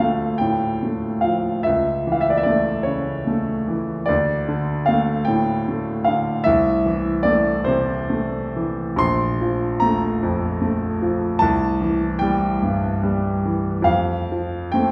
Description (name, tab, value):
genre	classical, romantic nocturne for solo piano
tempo	43-52 BPM (dotted quarters)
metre	12/8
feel	rubato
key	D minor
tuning	A4 = 441 Hz
part	clear grand piano	solo	0.0-14.9 s	Bb1 to C6	-21 LUFS	equal	none
room	wet recital hall reverb, RT60 1.4 s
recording	heard from further back in the room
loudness	-21 LUFS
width	mono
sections	0.0-14.9 A section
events	none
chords	0.0 Dm; 1.7 A/C#; 4.1 D5; 6.5 Am/C; 9.0 Bb5; 11.4 C; 13.9 F